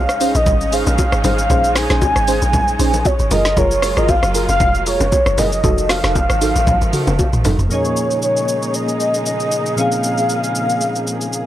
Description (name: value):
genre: amapiano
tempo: 116 BPM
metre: 4/4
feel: swing 55% on 16ths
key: Bb minor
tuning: A4 = 440 Hz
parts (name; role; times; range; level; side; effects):
- warm velvety synth lead; melody; 0.0-11.5 s; Db5 to Ab5; -18 LUFS; equal; chorus, tape echo
- dark studio string section; sustained chords; 0.0-11.5 s; Db3 to Ab4; -26 LUFS; right 2 dB; sidechain pumping
- deep log drum bass; bass; 0.0-7.7 s; F1 to Db2; -19 LUFS; equal; none
- smooth R&B drum kit; drums; 0.1-11.5 s; hi-hat, kick drum, rim click, shaker, snare drum, toms; -20 LUFS; equal; none
- deep mellow chord stab; stabs; 0.2-7.6 s; Db4 to C5; -23 LUFS; right 2 dB; chorus, tape echo
- bongos and congas; percussion; 0.4-7.6 s; none; -23 LUFS; left 3 dB; none
- soft electric-piano-like synth keys; accompaniment; 7.7-11.5 s; Bb2 to Ab4; -21 LUFS; left 2 dB; chorus, tremolo
room: little or no reverb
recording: dry, gritty hardware recording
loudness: -14 LUFS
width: side -12 dB against mid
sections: 0.0-7.7 A section; 7.7-11.5 B section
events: drop 0.0-7.7; drum fill 6.7-7.7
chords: 0.0 Bbm11; 3.3 Gbmaj9; 5.1 Gb9; 5.6 F7b9; 7.7 Bbm11